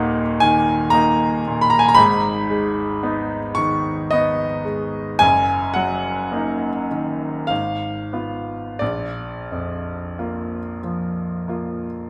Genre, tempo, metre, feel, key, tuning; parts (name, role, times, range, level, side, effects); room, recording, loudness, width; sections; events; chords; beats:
classical, romantic nocturne for solo piano; 43-58 BPM; 3/4; rubato; Eb minor; A4 = 440 Hz
clear grand piano; solo; 0.0-12.1 s; Eb1 to Db6; -20 LUFS; equal
wet recital hall reverb, RT60 1.7 s; recorded in a church or concert hall; -20 LUFS; mono
0.0-12.1 A section
0.0 Ebm; 2.0 Abm; 5.2 Ebm/Gb; 7.5 Fdim/Ab; 8.8 Bb
0.93 | 1.98 3.04 4.14 | 5.22 6.33 7.50 | 8.80 10.17 11.48